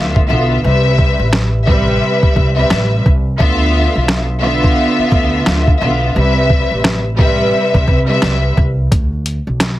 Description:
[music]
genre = hip hop, boom-bap hip-hop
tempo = 87 BPM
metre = 4/4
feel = swing 60% on 16ths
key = D dorian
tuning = A4 = 442 Hz
[part]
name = warm studio string section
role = accompaniment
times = 0.0-8.5 s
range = C3 to E5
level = -15 LUFS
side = equal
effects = cassette tape, high-pass filter, low-pass filter
[part]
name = upright bass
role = bass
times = 0.0-9.8 s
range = A1 to C3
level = -16 LUFS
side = equal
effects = none
[part]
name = boom bap sampler-style drum kit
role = drums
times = 0.2-9.8 s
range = hi-hat, kick drum, rim click, snare drum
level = -14 LUFS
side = equal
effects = none
[sound]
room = light reverb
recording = heavily compressed radio sound, multiband compression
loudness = -11 LUFS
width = side -15 dB against mid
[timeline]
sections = 0.0-9.8 A section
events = break 0.0-8.9, 8.9-9.8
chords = 0.0 Dm69; 0.6 Am9; 3.4 Dm69; 6.2 Am9; 8.9 Bm

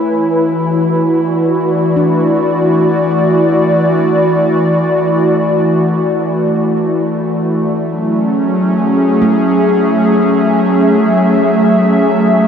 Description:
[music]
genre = ambient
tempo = free time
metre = none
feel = none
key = unclear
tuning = A4 = 439 Hz
[part]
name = airy breathy pad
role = sustained chords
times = 0.0-12.5 s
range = E3 to E5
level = -10 LUFS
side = equal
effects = chorus
[part]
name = handpan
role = arpeggios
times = 0.0-10.8 s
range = A3 to E4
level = -23 LUFS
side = equal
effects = none
[sound]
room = wet huge ambient reverb, RT60 9.2 s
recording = in a vast, echoing space, cassette tape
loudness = -10 LUFS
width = side -7 dB against mid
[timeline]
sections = 0.0-12.5 A section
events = none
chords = 0.0 E7sus4; 7.8 F#m7

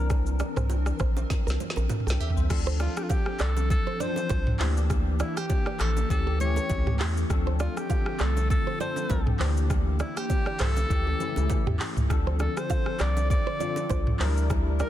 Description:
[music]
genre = afrobeats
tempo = 100 BPM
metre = 4/4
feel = swing 55% on 16ths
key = D minor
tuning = A4 = 439 Hz
[part]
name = bell-like tine electric piano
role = accompaniment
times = 0.0-14.9 s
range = E3 to G5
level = -34 LUFS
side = left 5 dB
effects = ensemble chorus
[part]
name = hollow soft pad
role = sustained chords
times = 0.0-14.9 s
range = C#3 to Bb4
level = -37 LUFS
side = left 1 dB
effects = ensemble chorus
[part]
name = round analog bass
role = bass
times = 0.0-14.8 s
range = Bb1 to E2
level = -26 LUFS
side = equal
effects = none
[part]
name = afro-pop drum kit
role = drums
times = 0.1-14.9 s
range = crash cymbal, handclaps, hi-hat, kick drum, rim click, shaker, snare drum, toms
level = -28 LUFS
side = equal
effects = vintage 12-bit sampler grit
[part]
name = congas and bongos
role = percussion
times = 0.1-14.9 s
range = none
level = -39 LUFS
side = right 6 dB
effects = none
[part]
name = nylon-string guitar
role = riff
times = 0.4-14.9 s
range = G4 to F5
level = -37 LUFS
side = right 8 dB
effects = tape echo
[part]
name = breathy alto saxophone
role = melody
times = 2.8-14.9 s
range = E4 to D5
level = -33 LUFS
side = equal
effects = tape echo
[sound]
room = little or no reverb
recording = dense, heavily limited modern master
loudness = -24 LUFS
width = side -12 dB against mid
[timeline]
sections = 0.0-2.5 A section; 2.5-14.9 B section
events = drum fill 1.3-2.5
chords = 0.0 C9; 2.5 Dm7; 4.6 Em7b5/D; 6.1 A7/D; 7.3 Dm7; 9.4 Em7b5/D; 10.9 A7; 12.1 Dm7; 14.2 Em7b5/D

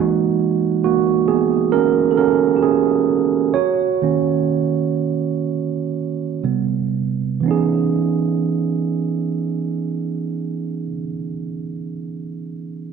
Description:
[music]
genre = R&B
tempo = 58-68 BPM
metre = 4/4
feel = swing 63% on 16ths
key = C# dorian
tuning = A4 = 440 Hz
[part]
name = mellow tine electric piano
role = accompaniment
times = 0.0-12.9 s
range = C3 to C#5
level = -17 LUFS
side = right 7 dB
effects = fast stereo tremolo
[sound]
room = wet echo chamber reverb, RT60 2.1 s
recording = 1960s-style stereo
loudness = -17 LUFS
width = side -5 dB against mid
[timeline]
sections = 0.0-7.5 A section; 7.5-11.6 B section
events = slowing down 0.0-7.5; tine electric piano solo 0.0-7.5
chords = 0.0 F#13; 3.5 D#m7; 6.4 Gadd11/C; 7.5 C#m9

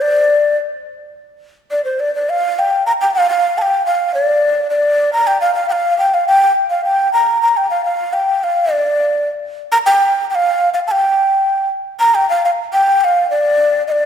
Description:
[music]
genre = andean folk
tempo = 105 BPM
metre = 2/4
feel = straight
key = G minor pentatonic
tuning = A4 = 441 Hz
[part]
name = breathy mellow large quena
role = solo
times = 0.0-14.1 s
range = C5 to Bb5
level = -13 LUFS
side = equal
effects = none
[sound]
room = moderate concert hall reverb, RT60 1.9 s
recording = recorded in a church or concert hall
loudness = -12 LUFS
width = side -8 dB against mid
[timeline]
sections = 0.0-3.1 A section; 3.1-12.3 B section; 12.3-14.1 B section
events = none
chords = none

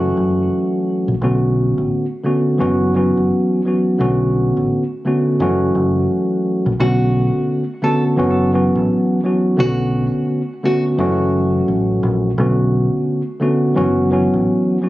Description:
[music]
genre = hip hop, boom-bap hip-hop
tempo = 86 BPM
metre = 4/4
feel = swing 61% on 16ths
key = B minor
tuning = A4 = 439 Hz
[part]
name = mellow tine electric piano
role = accompaniment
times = 0.0-14.9 s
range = D3 to F#4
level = -16 LUFS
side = equal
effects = cassette tape, high-pass filter, low-pass filter
[part]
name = deep dub fingered electric bass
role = bass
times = 0.0-14.5 s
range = F#1 to B1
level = -20 LUFS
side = equal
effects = none
[part]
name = nylon-string guitar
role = melody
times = 6.8-10.8 s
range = F#4 to A4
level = -25 LUFS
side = right 1 dB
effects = high-pass filter, low-pass filter, tape echo
[sound]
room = light reverb, small room ambience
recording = recorded on a phone in the room, studio ambience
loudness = -14 LUFS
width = side -16 dB against mid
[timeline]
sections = 0.0-6.8 A section; 6.8-14.9 B section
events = none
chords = 0.0 F#m7; 1.2 Bm7; 2.6 F#7sus4; 4.0 Bm7; 5.4 F#m7; 6.8 Bm7; 8.2 F#7sus4; 9.6 Bm7; 11.0 F#m7; 12.4 Bm7; 13.8 F#7sus4

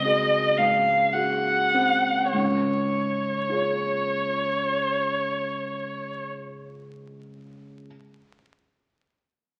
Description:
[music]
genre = classical, romantic duo for violin and grand piano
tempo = 47-57 BPM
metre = 3/4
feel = rubato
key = Db major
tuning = A4 = 439 Hz
[part]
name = rich violin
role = melody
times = 0.0-6.2 s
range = Db5 to Gb5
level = -25 LUFS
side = equal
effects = none
[part]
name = dark concert grand piano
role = accompaniment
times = 0.0-7.9 s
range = Db2 to Db5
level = -31 LUFS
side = equal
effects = none
[sound]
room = wet recital hall reverb, RT60 1.4 s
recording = very old 78 rpm record, vinyl crackle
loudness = -24 LUFS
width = mono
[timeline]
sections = 0.0-2.3 A section; 2.3-5.7 B section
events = slowing down 0.0-2.3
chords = 0.0 Ab7/Db; 2.3 Db

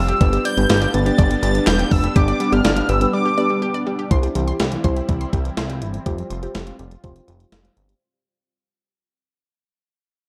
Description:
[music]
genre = synth-pop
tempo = 123 BPM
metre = 4/4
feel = straight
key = C major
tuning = A4 = 443 Hz
[part]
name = octave-doubled lead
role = melody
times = 0.0-3.8 s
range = D6 to A6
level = -26 LUFS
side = equal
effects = chorus, phaser, tape echo
[part]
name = mellow FM electric piano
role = accompaniment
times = 0.0-7.9 s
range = B3 to D5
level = -26 LUFS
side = equal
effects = chorus, tremolo, low-pass filter
[part]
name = lush unison pad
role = sustained chords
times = 0.0-8.0 s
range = G3 to F4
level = -29 LUFS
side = equal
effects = chorus, phaser, low-pass filter
[part]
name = unison pluck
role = arpeggios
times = 0.0-8.0 s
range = E3 to C6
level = -30 LUFS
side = equal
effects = low-pass filter, tape echo
[part]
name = chorused synth bass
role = bass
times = 0.0-7.9 s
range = E1 to C2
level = -24 LUFS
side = equal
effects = none
[part]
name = gated 80s digital drum machine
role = drums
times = 0.1-8.0 s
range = handclaps, hi-hat, kick drum, snare drum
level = -22 LUFS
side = equal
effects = gated reverb, gated reverb snare
[sound]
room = light reverb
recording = dark, warm production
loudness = -19 LUFS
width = mono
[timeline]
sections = 0.0-4.1 A section; 4.1-8.0 B section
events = break 3.1-4.1; fade-out 4.1-8.0; filter sweep 4.1-8.0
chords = 0.2 G; 4.1 C; 6.1 Fsus2

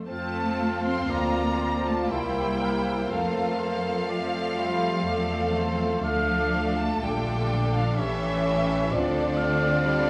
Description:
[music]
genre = classical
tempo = 61 BPM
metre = 3/4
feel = uneven beats, rubato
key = F major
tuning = A4 = 445 Hz
[part]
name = rich studio viola section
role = accompaniment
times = 0.0-10.1 s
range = D3 to F4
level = -34 LUFS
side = equal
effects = none
[part]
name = rich studio violin section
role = melody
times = 0.1-10.1 s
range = D5 to C6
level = -35 LUFS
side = equal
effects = none
[part]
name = clear clarinet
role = second line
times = 0.1-10.1 s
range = E4 to G4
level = -42 LUFS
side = equal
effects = none
[part]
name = clear studio violin section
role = second line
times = 0.1-10.1 s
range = E4 to C5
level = -40 LUFS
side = equal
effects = none
[part]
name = mellow cor anglais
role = second line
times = 0.1-10.1 s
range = A4 to F5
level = -35 LUFS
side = equal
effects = none
[part]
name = mellow hollow flute section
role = second line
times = 0.1-10.1 s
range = D5 to C6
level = -38 LUFS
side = equal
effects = none
[part]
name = mellow bassoon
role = accompaniment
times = 0.1-10.1 s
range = A3 to C#4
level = -35 LUFS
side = equal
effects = none
[part]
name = warm French horn section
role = sustained chords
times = 0.1-10.1 s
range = A3 to G4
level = -35 LUFS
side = equal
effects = none
[part]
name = clear symphonic cello section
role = bass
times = 0.1-10.1 s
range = D3 to C4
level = -34 LUFS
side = equal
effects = none
[part]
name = rich studio double bass section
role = bass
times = 0.1-10.1 s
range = A1 to F2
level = -34 LUFS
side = equal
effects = none
[sound]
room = wet recital hall reverb, RT60 1.3 s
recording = recorded in a church or concert hall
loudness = -26 LUFS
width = mono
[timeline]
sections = 0.1-10.1 A section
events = none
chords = 0.1 F; 2.1 C7; 3.1 F; 6.0 Dm; 8.0 A7; 8.9 Dm7

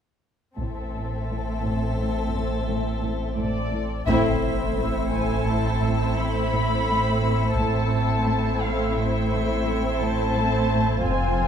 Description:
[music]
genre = cinematic, suspense film score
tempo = 86 BPM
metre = 5/4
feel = straight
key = A minor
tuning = A4 = 440 Hz
[part]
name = muted studio violin section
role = melody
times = 0.6-11.5 s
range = D5 to B5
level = -30 LUFS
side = left 2 dB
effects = none
[part]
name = muted studio violin section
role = second line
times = 0.6-11.5 s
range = C4 to C5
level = -30 LUFS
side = left 2 dB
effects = none
[part]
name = icy glass pad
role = sustained chords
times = 1.2-11.5 s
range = F4 to E5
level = -32 LUFS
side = right 2 dB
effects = chorus, built-in reverb
[part]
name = muted studio cello section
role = riff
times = 0.6-11.5 s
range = F2 to A3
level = -31 LUFS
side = equal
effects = none
[part]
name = muted studio cello section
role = bass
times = 0.6-11.5 s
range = F2 to A2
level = -30 LUFS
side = right 2 dB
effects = none
[part]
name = muted studio double bass section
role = bass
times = 0.6-11.5 s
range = F1 to A1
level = -28 LUFS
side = right 3 dB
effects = none
[part]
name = punchy sub bass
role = drone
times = 0.6-11.5 s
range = F1 to A1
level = -30 LUFS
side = equal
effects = none
[part]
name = muted symphonic viola section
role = accompaniment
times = 4.1-11.5 s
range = A3 to C4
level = -29 LUFS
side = left 1 dB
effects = none
[part]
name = impact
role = sound effects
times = 4.1-7.6 s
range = none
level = -35 LUFS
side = left 1 dB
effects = none
[part]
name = muted studio violin section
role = texture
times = 4.1-10.7 s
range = E6 to C#7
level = -37 LUFS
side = left 1 dB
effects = none
[sound]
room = wet recital hall reverb, RT60 1.6 s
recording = minimal, uncompressed stereo recording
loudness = -21 LUFS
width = side -8 dB against mid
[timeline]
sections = 0.6-4.1 A section; 4.1-11.5 B section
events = band accent 4.1-4.8; impact 4.1-7.6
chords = 0.6 Am

